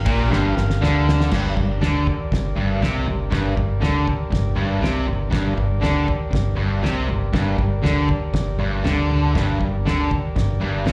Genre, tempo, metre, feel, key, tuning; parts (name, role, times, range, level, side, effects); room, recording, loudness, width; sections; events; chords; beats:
garage rock duo or trio; 119 BPM; 4/4; straight; G minor; A4 = 437 Hz
combo organ; sustained chords; 0.0-10.9 s; G4 to F5; -33 LUFS; equal
fuzz guitar; riff; 0.0-10.9 s; G2 to D3; -25 LUFS; equal; distortion, slapback echo
fingered electric bass; bass; 0.0-10.9 s; G1 to D2; -25 LUFS; equal; overdrive
cloth-damped thuddy drum kit; drums; 0.1-10.9 s; crash cymbal, kick drum, ride cymbal, snare drum, toms; -27 LUFS; equal
light reverb, small room ambience; live gig heard through the venue's PA, club reverb; -21 LUFS; mono
0.0-1.3 A section; 1.3-10.9 B section
drum fill 0.3-1.3
0.0 Gm
0.31 0.81 | 1.31 1.81 2.31 2.81 | 3.32 3.82 4.32 4.83 | 5.33 5.83 6.33 6.84 | 7.34 7.84 8.34 8.85 | 9.35 9.85 10.36 10.86